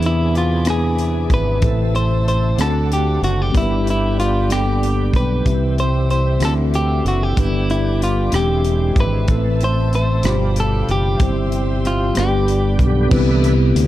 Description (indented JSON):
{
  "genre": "slow gospel",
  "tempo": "63 BPM (dotted quarters)",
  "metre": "6/8",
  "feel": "straight",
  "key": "C major",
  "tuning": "A4 = 440 Hz",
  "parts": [
    { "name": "clean electric guitar", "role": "melody", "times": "0.0-12.9 s", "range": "E4 to C5", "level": "-22 LUFS", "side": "equal", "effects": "none" },
    { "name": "mellow tine electric piano", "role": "accompaniment", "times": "0.0-13.9 s", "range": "G2 to B5", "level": "-22 LUFS", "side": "left 1 dB", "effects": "medium stereo tremolo" },
    { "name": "bright tonewheel organ", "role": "sustained chords", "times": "0.0-13.5 s", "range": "B2 to F#5", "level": "-28 LUFS", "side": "right 2 dB", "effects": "slow rotary speaker, overdrive, chorus vibrato" },
    { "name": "warm studio string section", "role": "sustained chords", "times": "0.0-13.1 s", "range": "D5 to E6", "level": "-34 LUFS", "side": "left 2 dB", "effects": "none" },
    { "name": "fingered electric bass", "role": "bass", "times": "0.0-13.9 s", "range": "E1 to E2", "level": "-18 LUFS", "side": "equal", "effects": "none" },
    { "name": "tight funk drum kit", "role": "drums", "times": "0.0-13.9 s", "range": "crash cymbal, hi-hat, kick drum, rim click", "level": "-21 LUFS", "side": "equal", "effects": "none" }
  ],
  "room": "small room ambience",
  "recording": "dark, warm production",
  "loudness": "-15 LUFS",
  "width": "side -14 dB against mid",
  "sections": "0.0-13.1 A section",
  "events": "none",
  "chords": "0.0 E7; 1.6 Am; 2.6 D7; 3.5 G; 5.5 C; 6.4 D9; 7.4 G; 8.3 E7alt; 9.3 Am; 10.2 G7; 11.2 C/G; 12.2 G; 13.1 Cmaj7"
}